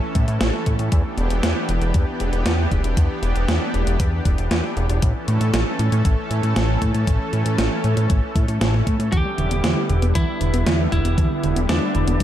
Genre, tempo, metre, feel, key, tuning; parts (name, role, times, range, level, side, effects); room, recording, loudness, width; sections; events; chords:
synthwave; 117 BPM; 4/4; straight; E dorian; A4 = 440 Hz
lush unison pad; sustained chords; 0.0-12.2 s; D3 to A4; -26 LUFS; equal; chorus, sidechain pumping
fat analog bass; bass; 0.2-12.2 s; E1 to A2; -20 LUFS; equal
electronic kick drum; drums; 0.2-12.2 s; -20 LUFS; equal; small room ambience
gated 80s digital drum machine; drums; 0.2-12.2 s; hi-hat, snare drum; -26 LUFS; right 1 dB; gated reverb, gated reverb snare, overdrive, small room ambience
lightly driven lead guitar; melody; 9.1-12.2 s; D4 to G4; -26 LUFS; equal; ping-pong delay
soft round pluck; arpeggios; 9.1-12.2 s; D3 to B3; -27 LUFS; right 3 dB; chorus, cassette tape, ping-pong delay
light reverb; dark, warm production; -18 LUFS; side -11 dB against mid
0.0-12.2 A section
0.0 A; 0.9 Em7; 5.0 A; 9.1 Em7